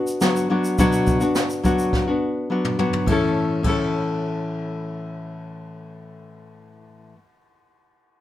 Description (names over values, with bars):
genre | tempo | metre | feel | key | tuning
acoustic pop | 105 BPM | 4/4 | straight | A major | A4 = 439 Hz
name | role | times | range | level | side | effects
nylon-string guitar | accompaniment | 0.0-7.2 s | A2 to A4 | -21 LUFS | left 2 dB | none
jazz brush drum kit | drums | 0.1-3.8 s | kick drum, ride cymbal, shaker, snare drum, toms | -26 LUFS | right 1 dB | none
room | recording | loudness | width
moderate studio reverb, RT60 0.8 s | none | -19 LUFS | side -13 dB against mid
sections
0.0-3.1 A section; 3.1-5.4 B section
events
drum fill 1.9-3.1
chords
0.0 Bm; 3.1 A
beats
0.21 | 0.79 1.36 1.93 2.50 | 3.08 3.65 4.22 4.79